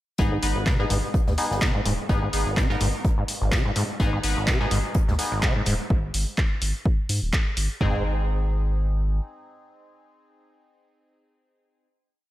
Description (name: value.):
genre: acid house.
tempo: 126 BPM.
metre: 4/4.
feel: swing 55% on 16ths.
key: unclear.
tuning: A4 = 435 Hz.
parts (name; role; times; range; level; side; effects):
overdriven acid bass; riff; 0.2-8.0 s; G#1 to C#3; -27 LUFS; equal; distortion, wide subtle chorus, vintage 12-bit sampler grit, analog delay.
band-passed chord stab; stabs; 0.2-11.9 s; B3 to B4; -30 LUFS; left 1 dB; phaser, analog delay.
round analog bass; bass; 0.2-9.2 s; D#1 to G#2; -26 LUFS; equal; sidechain pumping.
punchy analog drum machine; drums; 0.2-7.9 s; kick drum, toms; -23 LUFS; equal; none.
unplugged drum kit; drums; 0.2-5.8 s; hi-hat, snare drum; -41 LUFS; left 3 dB; none.
punchy analog drum machine; drums; 0.4-7.7 s; handclaps, hi-hat; -29 LUFS; equal; none.
room: light reverb, digital ambience.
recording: none.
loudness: -21 LUFS.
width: side -15 dB against mid.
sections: 0.2-7.8 groove; 7.8-11.6 final chord.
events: filter sweep on acid bass 0.2-5.9.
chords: 0.2 G#m; 7.8 G#.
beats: | 0.19 0.67 1.14 1.62 | 2.09 2.57 3.05 3.52 | 4.00 4.47 4.95 5.43 | 5.90 6.38 6.86 7.33 | 7.81 8.28 8.76 9.24 | 9.71 10.19 10.66 11.14.